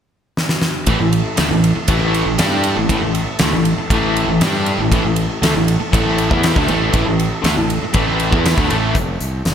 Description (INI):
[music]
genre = hard rock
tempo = 119 BPM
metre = 4/4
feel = straight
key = unclear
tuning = A4 = 440 Hz
[part]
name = huge arena drum kit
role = drums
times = 0.4-9.5 s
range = hi-hat, kick drum, ride cymbal, snare drum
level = -19 LUFS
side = equal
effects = none
[part]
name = tonewheel organ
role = sustained chords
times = 0.9-8.9 s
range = A3 to A4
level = -28 LUFS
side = equal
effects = none
[part]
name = distorted electric guitar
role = riff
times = 0.9-9.0 s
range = A2 to G4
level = -22 LUFS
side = left 1 dB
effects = distortion
[part]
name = overdriven electric guitar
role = riff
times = 0.9-9.0 s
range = A2 to G4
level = -20 LUFS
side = right 7 dB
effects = none
[part]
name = overdriven semi-hollow guitar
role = riff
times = 0.9-9.0 s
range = A2 to G4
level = -22 LUFS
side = left 8 dB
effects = tremolo
[part]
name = fuzz fingered electric bass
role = bass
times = 0.9-9.5 s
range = F1 to G2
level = -21 LUFS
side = equal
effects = overdrive
[sound]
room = moderate lush hall reverb, RT60 2.1 s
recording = bright 1980s-style digital production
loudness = -14 LUFS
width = side -8 dB against mid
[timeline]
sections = 0.9-9.0 A section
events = drum fill 0.4-0.9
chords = 0.0 N.C.; 0.9 A5; 9.0 F5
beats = 0.37 | 0.88 1.38 1.89 2.39 | 2.90 3.40 3.90 4.41 | 4.92 5.42 5.93 6.43 | 6.94 7.44 7.95 8.46 | 8.96 9.47